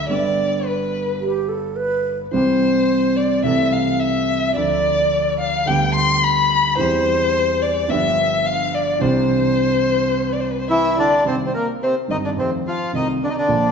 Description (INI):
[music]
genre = tango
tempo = 108 BPM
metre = 4/4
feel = rubato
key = C major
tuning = A4 = 439 Hz
[part]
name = dark violin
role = second line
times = 0.0-13.7 s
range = Bb4 to C6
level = -19 LUFS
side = left 3 dB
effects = none
[part]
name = warm concert grand piano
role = accompaniment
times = 0.0-13.7 s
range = G1 to A4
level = -21 LUFS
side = right 2 dB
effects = none
[part]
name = breathy mellow concert flute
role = second line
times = 1.2-2.2 s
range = G4 to B4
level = -22 LUFS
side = right 5 dB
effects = none
[part]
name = bandoneon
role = melody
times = 10.7-13.7 s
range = C3 to Bb4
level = -19 LUFS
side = equal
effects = none
[sound]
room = wet large studio reverb, RT60 1.4 s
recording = band playing live in one room, nothing above 7.8 kHz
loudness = -16 LUFS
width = side -6 dB against mid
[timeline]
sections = 0.0-11.2 A section; 11.2-13.7 B section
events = violin solo 0.0-11.2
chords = 0.1 G; 2.3 C; 3.4 Am/C; 4.6 Dm; 5.7 G/D; 6.8 C/E; 7.9 G7; 9.0 Cadd9; 11.2 Cmadd9; 12.4 F7